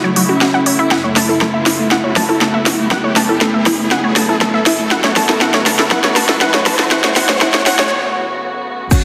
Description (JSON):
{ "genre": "melodic techno", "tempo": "120 BPM", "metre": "4/4", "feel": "straight", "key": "unclear", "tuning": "A4 = 439 Hz", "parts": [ { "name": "expressive synth lead", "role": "melody", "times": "0.0-9.0 s", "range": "F#3 to E4", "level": "-20 LUFS", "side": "equal", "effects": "ensemble chorus, cassette tape, sidechain pumping, digital delay" }, { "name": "dark studio string section", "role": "sustained chords", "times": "0.0-9.0 s", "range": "F#2 to F#4", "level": "-24 LUFS", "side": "equal", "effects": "sidechain pumping, low-pass filter" }, { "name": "unison pluck", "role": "arpeggios", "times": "0.0-9.0 s", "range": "E4 to A5", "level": "-20 LUFS", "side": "equal", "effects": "sidechain pumping, tape echo" }, { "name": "riser and impact", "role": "sound effects", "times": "0.0-9.0 s", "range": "none", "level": "-25 LUFS", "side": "equal", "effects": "none" }, { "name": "techno drum kit", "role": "drums", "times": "0.2-9.0 s", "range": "crash cymbal, hi-hat, percussion blips, rim click, snare drum", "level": "-18 LUFS", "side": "equal", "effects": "none" }, { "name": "electronic kick drum", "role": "drums", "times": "8.9-9.0 s", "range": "none", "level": "-12 LUFS", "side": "equal", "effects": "none" }, { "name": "egg shaker", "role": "percussion", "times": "8.9-9.0 s", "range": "none", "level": "-26 LUFS", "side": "equal", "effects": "none" } ], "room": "wet lush hall reverb, RT60 1.6 s", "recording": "dense, heavily limited modern master, high-pass filter", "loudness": "-14 LUFS", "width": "mono", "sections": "0.0-8.9 A section", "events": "build-up 0.0-8.9; drum fill 0.0-7.9; riser 0.0-7.9; filter sweep on synth arpeggio sound 0.0-8.9; filter sweep on analog synth lead 0.0-8.9; break 7.9-8.9", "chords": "0.0 F#m; 0.9 Aadd9/F#" }